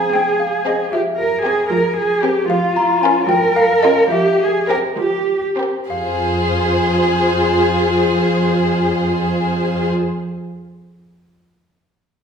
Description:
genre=cinematic, playful, whimsical film cue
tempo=64-77 BPM (dotted quarters)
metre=6/8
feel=straight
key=F minor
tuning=A4 = 440 Hz
part: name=rich chamber violin section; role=melody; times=0.0-9.9 s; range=Ab4 to C5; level=-26 LUFS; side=left 3 dB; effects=none
part: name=xylophone with soft rubber mallets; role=melody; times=0.0-9.9 s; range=Eb5 to Bb5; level=-19 LUFS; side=left 3 dB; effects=none
part: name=warm chamber violin section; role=second line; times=0.0-9.9 s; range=C4 to Ab4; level=-21 LUFS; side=left 3 dB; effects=none
part: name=concert harp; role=arpeggios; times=0.0-1.5 s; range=F3 to F4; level=-40 LUFS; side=right 1 dB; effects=none
part: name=dark chamber cello section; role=bass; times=0.0-9.9 s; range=F2 to Bb4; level=-18 LUFS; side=right 2 dB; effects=none
part: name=warm studio viola section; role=accompaniment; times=0.1-9.9 s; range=F3 to F4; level=-22 LUFS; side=right 2 dB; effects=none
room=wet recital hall reverb, RT60 1.4 s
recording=recorded in a church or concert hall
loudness=-14 LUFS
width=side -6 dB against mid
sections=0.0-5.9 A section; 5.9-9.6 B section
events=slowing down 1.7-5.9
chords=0.0 Fm; 0.9 C7/F; 2.5 Bbm/F; 4.1 C7/F; 5.9 Fm

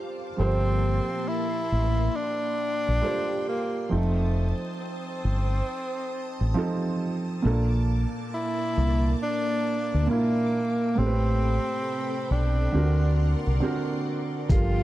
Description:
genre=lo-fi hip hop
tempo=68 BPM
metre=4/4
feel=swing 64% on 16ths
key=unclear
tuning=A4 = 440 Hz
part: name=felt-muted upright piano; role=accompaniment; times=0.0-14.8 s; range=A2 to C5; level=-29 LUFS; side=right 3 dB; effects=cassette tape
part: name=string machine, full ensemble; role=sustained chords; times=0.0-14.8 s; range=Bb3 to Eb6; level=-34 LUFS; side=left 1 dB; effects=ensemble chorus
part: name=breathy tenor saxophone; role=melody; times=0.4-14.8 s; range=A3 to F4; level=-30 LUFS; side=equal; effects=tape echo
part: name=deep dub fingered electric bass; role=bass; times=0.4-14.8 s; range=F1 to D2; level=-23 LUFS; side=equal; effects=none
part: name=dusty soul sampler-style drum kit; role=drums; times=14.5-14.8 s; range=hi-hat, kick drum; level=-22 LUFS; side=equal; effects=none
room=moderate small room ambience, RT60 0.5 s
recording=dark, warm production, vinyl crackle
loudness=-23 LUFS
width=side -15 dB against mid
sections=0.4-14.8 A section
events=break 0.0-0.4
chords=0.4 Gm11; 3.9 F7; 7.4 Bbmaj7; 11.0 Am9; 12.7 D7b13

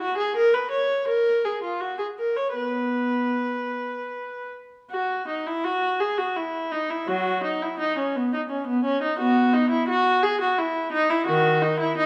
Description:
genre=classical, baroque-style suite movement for unaccompanied viola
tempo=74-88 BPM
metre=3/4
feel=rubato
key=B major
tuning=A4 = 439 Hz
part: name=rich viola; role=solo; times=0.0-12.1 s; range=D#3 to C#5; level=-24 LUFS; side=equal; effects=none
room=moderate recital hall reverb, RT60 1.6 s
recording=dark, warm production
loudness=-24 LUFS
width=mono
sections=0.0-4.9 A section; 4.9-12.1 B section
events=none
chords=none

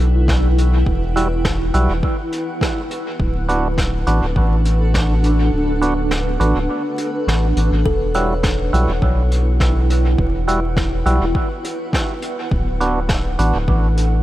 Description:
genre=ambient dub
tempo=103 BPM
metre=4/4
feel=swing 53% on 16ths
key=E dorian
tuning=A4 = 439 Hz
part: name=granular cloud pad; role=sustained chords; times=0.0-14.2 s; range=D4 to G5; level=-23 LUFS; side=right 1 dB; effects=built-in reverb
part: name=round analog bass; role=bass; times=0.0-14.2 s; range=D1 to B1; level=-17 LUFS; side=equal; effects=none
part: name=electronic kick drum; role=drums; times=0.3-13.8 s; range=none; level=-21 LUFS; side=equal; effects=none
part: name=jazz brush drum kit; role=drums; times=0.3-14.1 s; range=hi-hat, snare drum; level=-28 LUFS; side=equal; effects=dub echo
part: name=percussive tonewheel organ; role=stabs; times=1.2-13.6 s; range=G3 to F#4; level=-24 LUFS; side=right 2 dB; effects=overdrive, dub echo
part: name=kalimba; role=arpeggios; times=7.9-10.3 s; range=A4 to C#5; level=-28 LUFS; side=left 4 dB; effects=dub echo
room=small room ambience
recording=vinyl crackle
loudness=-15 LUFS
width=side -15 dB against mid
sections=0.0-14.2 A section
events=kick drops out 5.5-7.9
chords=0.0 Emadd9; 3.2 D6; 7.9 Emadd9; 12.5 D6

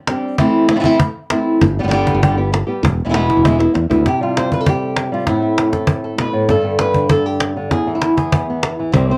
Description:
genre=flamenco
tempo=197 BPM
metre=4/4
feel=straight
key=A minor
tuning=A4 = 436 Hz
part: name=flamenco guitar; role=melody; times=0.1-9.2 s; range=E2 to D5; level=-18 LUFS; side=equal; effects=none
part: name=cajon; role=percussion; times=0.1-9.1 s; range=none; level=-21 LUFS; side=equal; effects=none
part: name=modern bright fingered electric bass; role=bass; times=1.6-4.0, 8.9-9.1 s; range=E1 to E2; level=-20 LUFS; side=equal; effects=none
room=wet small room reverb, RT60 0.5 s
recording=home recording on cassette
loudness=-16 LUFS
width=mono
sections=0.0-4.1 A section; 4.1-9.2 B section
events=drum fill 3.6-4.1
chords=0.4 Am; 1.6 G; 2.8 E; 4.1 C5; 5.3 Am; 6.5 Gadd9; 7.7 E

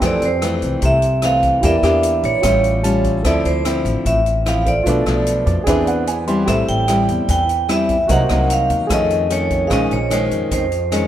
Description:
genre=bossa nova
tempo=149 BPM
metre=4/4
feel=straight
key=F major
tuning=A4 = 440 Hz
part: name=nylon-string guitar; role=accompaniment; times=0.0-11.1 s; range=F2 to G#4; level=-20 LUFS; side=left 2 dB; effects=none
part: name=warm grand piano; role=accompaniment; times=0.0-11.1 s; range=C4 to C6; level=-24 LUFS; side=right 4 dB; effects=none
part: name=upright bass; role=bass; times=0.0-11.1 s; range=A1 to F2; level=-21 LUFS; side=equal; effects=none
part: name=swinging big-band drum kit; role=drums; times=0.0-11.0 s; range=hi-hat, kick drum, rim click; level=-26 LUFS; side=equal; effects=none
part: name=vibraphone with medium hard mallets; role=melody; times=0.1-11.1 s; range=C5 to G5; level=-19 LUFS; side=right 1 dB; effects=none
room=moderate lush hall reverb, RT60 2.0 s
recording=rough home demo mix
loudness=-14 LUFS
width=side -11 dB against mid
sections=0.0-11.1 A section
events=grand piano fill 2.6-3.2, 5.3-6.5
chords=0.0 Fmaj7; 1.6 Em7b5; 2.4 A7b13; 3.2 Dm9; 4.9 Bm7b5; 5.7 E7b13; 6.5 Am7; 8.1 Cm7b5; 8.9 F7alt; 9.7 Bbm11

